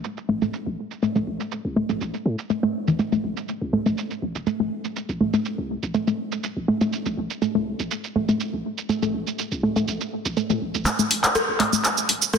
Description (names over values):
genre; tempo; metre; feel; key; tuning
minimal techno; 122 BPM; 4/4; straight; A minor; A4 = 440 Hz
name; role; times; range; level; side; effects
house drum kit; drums; 0.0-12.4 s; handclaps, hi-hat, rim click, shaker; -24 LUFS; right 1 dB; low-pass filter on perc, soft clipping on snare, low-pass filter on snare, low-pass filter on hats
hollow square pluck; riff; 0.3-12.4 s; E3 to A3; -24 LUFS; equal; chorus, dub echo
punchy sub bass; bass; 0.3-12.3 s; E1 to A2; -30 LUFS; equal; high-pass filter
room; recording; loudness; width
wet plate reverb, RT60 1.6 s, digital ambience; dense, heavily limited modern master; -22 LUFS; side -6 dB against mid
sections
0.0-10.9 A section; 10.9-12.4 B section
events
build-up 10.9-12.4; drum fill 10.9-12.4; filter sweep on synth arpeggio sound 10.9-12.4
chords
0.0 A5